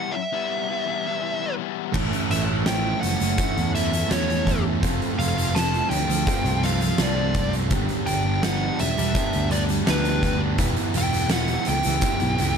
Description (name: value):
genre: quiet-loud alternative rock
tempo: 83 BPM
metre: 4/4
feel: straight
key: unclear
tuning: A4 = 438 Hz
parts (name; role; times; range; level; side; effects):
- fuzz lead guitar; melody; 0.0-12.6 s; B4 to A5; -28 LUFS; equal; distortion, tape echo
- thick fuzz guitar; riff; 0.0-12.6 s; A2 to G4; -30 LUFS; left 17 dB; distortion
- sludgy distorted guitar; riff; 1.9-12.6 s; A2 to G4; -27 LUFS; right 16 dB; overdrive
- fingered electric bass; bass; 1.9-12.6 s; E1 to E2; -26 LUFS; equal; none
- oversized low-tuned drum kit; drums; 1.9-12.6 s; crash cymbal, hi-hat, kick drum, snare drum; -25 LUFS; equal; none
room: light reverb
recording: none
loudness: -20 LUFS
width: side -6 dB against mid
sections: 0.0-12.6 A section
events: none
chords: 0.0 Em; 1.9 A; 4.8 F; 7.7 G; 10.6 Em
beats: 0.50 1.22 | 1.95 2.67 3.39 4.11 | 4.84 5.56 6.28 7.00 | 7.72 8.44 9.16 9.88 | 10.60 11.32 12.04